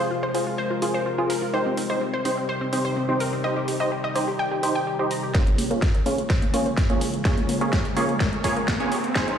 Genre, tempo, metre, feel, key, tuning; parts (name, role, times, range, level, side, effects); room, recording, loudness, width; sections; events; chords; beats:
progressive house; 126 BPM; 4/4; straight; Bb dorian; A4 = 440 Hz
evolving wavetable pad; sustained chords; 0.0-9.4 s; C3 to G5; -30 LUFS; left 2 dB; chorus, built-in reverb, sidechain pumping
wide unison pluck; arpeggios; 0.0-9.3 s; Bb3 to Bb5; -28 LUFS; left 1 dB; cassette tape, sidechain pumping, digital delay
supersaw stab; stabs; 0.0-9.4 s; Bb3 to Db5; -26 LUFS; right 2 dB; sidechain pumping, low-pass filter, digital delay
big-room dance drum kit; drums; 0.3-9.4 s; hi-hat, snare drum; -31 LUFS; equal; overdrive, sidechain pumping on hats, high-pass filter on hats, high-pass filter on snare
electronic kick drum; drums; 5.3-9.3 s; -23 LUFS; equal
riser; sound effects; 6.5-9.4 s; -33 LUFS; equal
round analog bass; bass; 5.6-9.1 s; barely audible
moderate digital room reverb, RT60 1.2 s; played on a big sound system in a bare room, stone room reverb, high-pass filter, lossy compression artefacts; -21 LUFS; side -8 dB against mid
0.0-5.3 A section; 5.3-9.4 B section
build-up 5.3-9.4; drum fill 5.3-9.4; filter sweep on synth pluck 5.3-9.4; filter sweep on supersaw synth 5.3-9.4; filter sweep on ambient pad 5.3-9.4; filter sweep 5.3-9.4; riser 6.5-9.4
0.0 Fm; 1.5 Cm; 5.3 Bbm7
0.11 0.58 1.06 | 1.54 2.01 2.49 2.96 | 3.44 3.92 4.39 4.87 | 5.35 5.82 6.30 6.78 | 7.25 7.73 8.20 8.68 | 9.16